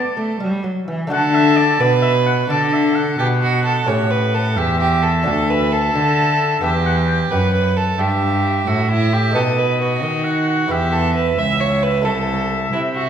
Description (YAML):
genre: classical, baroque-style sonata movement with continuo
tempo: 88 BPM (dotted quarters)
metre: 12/8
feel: straight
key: D major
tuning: A4 = 443 Hz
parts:
  - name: clear oboe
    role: melody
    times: 0.0-13.1 s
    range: D5 to G5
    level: -23 LUFS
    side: left 4 dB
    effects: none
  - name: warm violin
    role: second line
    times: 0.0-13.1 s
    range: E4 to E5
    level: -20 LUFS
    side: right 3 dB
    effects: none
  - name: lute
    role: accompaniment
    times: 0.0-13.1 s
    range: D2 to B4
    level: -23 LUFS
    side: left 2 dB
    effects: none
  - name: rich cello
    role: bass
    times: 0.2-13.1 s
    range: C2 to A3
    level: -19 LUFS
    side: right 1 dB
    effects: none
room: wet recital hall reverb, RT60 1.4 s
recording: recorded in a church or concert hall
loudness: -15 LUFS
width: side -8 dB against mid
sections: 0.0-1.1 A section; 1.1-13.1 B section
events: none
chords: 0.0 D; 3.9 A7; 5.3 D; 6.6 Em; 9.3 B7; 10.7 E5; 12.1 Am/C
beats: 0.40 | 1.11 1.80 2.50 3.19 | 3.88 4.57 5.26 5.94 | 6.62 7.31 7.98 8.66 | 9.34 10.03 10.70 11.38 | 12.05 12.73